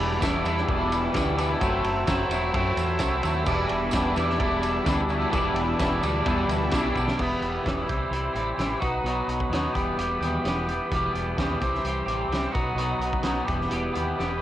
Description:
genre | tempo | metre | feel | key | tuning
indie rock | 129 BPM | 4/4 | straight | E minor, E harmonic minor from 7.2 s | A4 = 442 Hz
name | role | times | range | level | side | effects
tonewheel organ | sustained chords | 0.0-14.4 s | F#4 to C6 | -32 LUFS | right 1 dB | overdrive, stopped rotary speaker, cassette tape
twangy electric guitar | riff | 0.0-14.4 s | E2 to G4 | -25 LUFS | equal | double-tracked left and right, cassette tape
deep dub fingered electric bass | bass | 0.0-14.4 s | E1 to F#2 | -31 LUFS | equal | none
loose indie drum kit | drums | 0.2-14.3 s | crash cymbal, hi-hat, kick drum, ride cymbal, snare drum | -30 LUFS | equal | cassette tape
tambourine | percussion | 0.2-7.1 s | none | -44 LUFS | right 8 dB | none
room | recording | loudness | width
light reverb, small room ambience | home recording on cassette | -23 LUFS | side -12 dB against mid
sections
0.0-7.2 A section; 7.2-14.4 B section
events
drum fill 6.9, 14.2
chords
0.0 Em7; 1.6 F#m7b5; 3.5 Em7; 7.2 Em; 7.9 C; 8.8 B; 9.7 Em; 11.6 C; 12.6 B; 13.5 Em

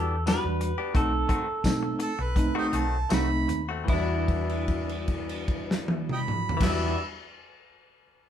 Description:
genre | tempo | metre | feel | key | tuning
straight-eighth soul blues | 75-91 BPM | 4/4 | swing 53% on 16ths | E minor | A4 = 438 Hz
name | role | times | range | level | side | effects
electric guitar through a small old amp | melody | 0.0-7.0 s | E4 to B4 | -33 LUFS | right 1 dB | none
tine electric piano | accompaniment | 0.0-7.0 s | G3 to F#4 | -32 LUFS | right 2 dB | medium stereo tremolo
direct-recorded clean electric guitar | stabs | 0.0-7.0 s | D#3 to G4 | -34 LUFS | left 6 dB | none
vintage muted fingered electric bass | bass | 0.0-6.9 s | B1 to B2 | -31 LUFS | equal | none
warm soul drum kit | drums | 0.3-6.8 s | crash cymbal, hi-hat, kick drum, snare drum, tambourine, toms | -28 LUFS | equal | none
clear harmonica | second line | 2.0-7.0 s | G4 to E6 | -32 LUFS | right 4 dB | overdrive
room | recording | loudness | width
moderate large studio reverb, RT60 0.9 s | band playing live in one room | -24 LUFS | side -10 dB against mid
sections
0.0-3.9 A section; 3.9-7.1 B section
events
slowing down 0.0-3.9; held note 3.9-6.6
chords
0.0 Em7; 0.9 B7b9; 3.9 Em7

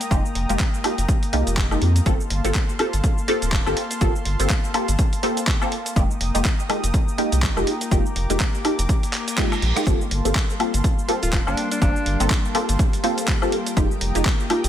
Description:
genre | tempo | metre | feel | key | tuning
deep house | 123 BPM | 4/4 | swing 58% on 16ths | G minor | A4 = 439 Hz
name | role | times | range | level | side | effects
warm analog pad | sustained chords | 0.0-14.7 s | Bb3 to Eb6 | -31 LUFS | left 2 dB | chorus, vintage 12-bit sampler grit, sidechain pumping
dusty soul sampler-style drum kit | drums | 0.0-14.7 s | handclaps, hi-hat, rim click, shaker, woodblock | -27 LUFS | equal | small room ambience
filtered dub chord stab | stabs | 0.1-14.6 s | Ab3 to A4 | -25 LUFS | equal | phaser, ensemble chorus, sidechain pumping, tape echo
round analog bass | bass | 0.1-14.7 s | D1 to F2 | -22 LUFS | equal | sidechain pumping
electronic kick drum | drums | 0.1-14.4 s | none | -21 LUFS | equal | small room ambience
reverse cymbal | sound effects | 9.1-9.9 s | none | -32 LUFS | right 4 dB | none
string machine, violins | texture | 9.9-14.7 s | G3 to G5 | -34 LUFS | equal | ensemble chorus, sidechain pumping
warm alto saxophone | melody | 11.2-12.3 s | D4 to F4 | -28 LUFS | equal | digital delay
room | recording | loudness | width
digital ambience | none | -19 LUFS | side -10 dB against mid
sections
0.0-14.7 A section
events
reverse cymbal 9.1-9.9; drum fill 9.4-9.9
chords
0.0 Fm11; 2.1 Gm11; 6.0 Fm11; 9.9 Gm11; 13.8 Fm11

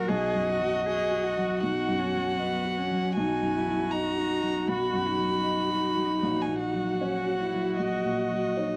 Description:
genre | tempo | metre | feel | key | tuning
neoclassical piano and strings | 78 BPM | 4/4 | rubato | B major | A4 = 440 Hz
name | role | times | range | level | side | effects
warm violin | melody | 0.0-8.8 s | D#5 to B5 | -33 LUFS | equal | none
dark cello | second line | 0.0-8.8 s | B3 to G#4 | -35 LUFS | equal | slapback echo
dark viola | accompaniment | 0.0-8.8 s | F#4 | -34 LUFS | equal | none
felt-muted upright piano | accompaniment | 0.0-8.8 s | A#1 to D#5 | -34 LUFS | equal | none
room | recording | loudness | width
light reverb | worn, warbling old tape, cassette tape, warbly pitch drift | -28 LUFS | mono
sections
0.0-8.8 A section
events
none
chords
0.1 B; 6.2 F#/A#

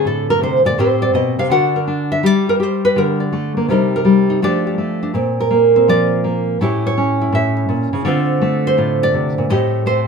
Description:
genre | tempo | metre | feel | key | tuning
solo jazz | 165 BPM | 4/4 | swing 66% on 8ths | D minor | A4 = 438 Hz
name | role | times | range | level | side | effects
nylon-string guitar | solo | 0.0-10.1 s | A2 to F#5 | -14 LUFS | equal | none
room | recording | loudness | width
moderate studio reverb, RT60 0.8 s | band playing live in one room | -14 LUFS | side -5 dB against mid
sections
0.0-10.1 A section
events
nylon-string guitar solo 0.0-10.1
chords
0.0 D7(no3); 0.8 Am9b5; 1.5 D; 2.2 Gm; 3.7 Cm7; 4.4 F69; 5.1 Bbadd9; 6.6 A7; 8.0 Dm7; 9.5 Am7b5

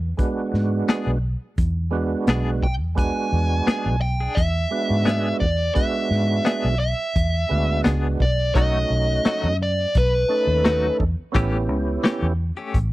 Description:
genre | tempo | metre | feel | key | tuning
straight-eighth soul blues | 86 BPM | 4/4 | straight | E mixolydian | A4 = 440 Hz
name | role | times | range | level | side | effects
vintage muted fingered electric bass | bass | 0.0-12.9 s | A1 to G#2 | -22 LUFS | equal | none
percussive tonewheel organ | accompaniment | 0.2-12.3 s | G#3 to A4 | -25 LUFS | right 3 dB | slow rotary speaker, overdrive, chorus vibrato
crunchy breakbeat drum kit | drums | 0.2-12.9 s | hi-hat, kick drum, snare drum | -22 LUFS | equal | none
direct-recorded clean electric guitar | stabs | 0.9-12.8 s | E3 to G#4 | -26 LUFS | left 4 dB | tremolo
dark smooth lead guitar | melody | 2.6-11.0 s | B4 to G#5 | -23 LUFS | equal | overdrive
room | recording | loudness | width
small room ambience | dry, close 1970s-style studio recording | -19 LUFS | side -17 dB against mid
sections
0.0-12.9 A section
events
none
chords
0.0 E7; 8.5 B7; 11.3 A7

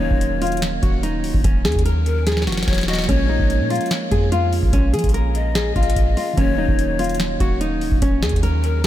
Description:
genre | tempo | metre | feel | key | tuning
hip hop, trap | 146 BPM | 4/4 | half-time | unclear | A4 = 439 Hz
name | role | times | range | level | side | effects
nylon-string guitar | melody | 0.0-8.9 s | Db4 to Bb4 | -23 LUFS | left 1 dB | low-pass filter, analog delay
breathy large pan pipes | second line | 0.0-8.8 s | Bb4 to Eb5 | -28 LUFS | left 5 dB | analog delay
soft electric-piano-like synth keys | accompaniment | 0.0-8.9 s | Eb3 to Db4 | -27 LUFS | right 2 dB | chorus, low-pass filter
clean 808-style bass | bass | 0.0-8.9 s | Db1 to F3 | -21 LUFS | equal | none
booming analog drum machine | drums | 0.1-8.9 s | hi-hat, kick drum, snare drum | -21 LUFS | equal | none
room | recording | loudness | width
light reverb | none | -16 LUFS | side -13 dB against mid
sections
0.0-8.9 A section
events
drum fill 2.3-3.1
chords
0.0 Ebm7; 3.1 Bbm7; 6.4 Ebm7

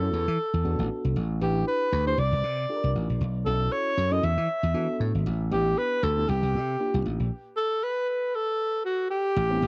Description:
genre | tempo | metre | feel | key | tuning
early-eighties boogie funk | 117 BPM | 4/4 | swing 56% on 16ths | A dorian | A4 = 440 Hz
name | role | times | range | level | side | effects
breathy alto saxophone | melody | 0.0-9.7 s | F#4 to E5 | -30 LUFS | equal | cassette tape, plate reverb
mellow FM electric piano | accompaniment | 0.0-9.7 s | Bb3 to B4 | -35 LUFS | equal | chorus, phaser, cassette tape
slap bass | bass | 0.0-9.7 s | G#1 to E3 | -28 LUFS | equal | none
room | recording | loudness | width
moderate booth ambience, RT60 0.2 s | home recording on cassette | -27 LUFS | mono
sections
0.0-9.4 A section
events
none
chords
0.1 E9sus4; 1.2 A9sus4; 2.2 C9sus4; 3.2 B9sus4; 4.2 E9sus4; 5.3 A9sus4; 6.3 C9sus4; 7.3 N.C.

